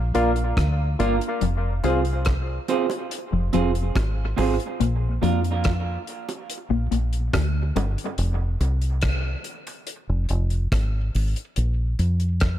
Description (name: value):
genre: dub reggae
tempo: 71 BPM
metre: 4/4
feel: straight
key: F dorian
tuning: A4 = 440 Hz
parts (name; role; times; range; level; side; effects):
- deep dub fingered electric bass; bass; 0.0-12.6 s; F1 to F2; -22 LUFS; equal; none
- semi-hollow electric guitar; accompaniment; 0.1-5.4 s; Bb3 to C5; -27 LUFS; right 7 dB; high-pass filter, dub echo
- percussive organ stab; stabs; 0.1-2.0 s; F4 to F5; -27 LUFS; left 4 dB; chorus, dub echo
- damped 70s drum kit; drums; 0.1-12.6 s; hi-hat, kick drum, rim click; -28 LUFS; equal; none
- mellow electric guitar; riff; 1.4-7.9 s; F2 to F3; -29 LUFS; left 8 dB; analog chorus, dub echo
- bongos; percussion; 1.8-12.2 s; none; -34 LUFS; right 4 dB; high-pass filter on perc, dub echo
room: small room ambience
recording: echo-heavy mix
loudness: -21 LUFS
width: side -12 dB against mid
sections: 0.0-12.6 A section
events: break 0.0-1.4; filter sweep 4.8-12.6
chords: 0.0 Bb; 1.4 Fm; 4.8 Bb; 8.2 Fm; 11.6 Bb5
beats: 0.58 | 1.43 2.27 3.12 3.96 | 4.81 5.65 6.50 7.34 | 8.19 9.03 9.88 10.72 | 11.57 12.41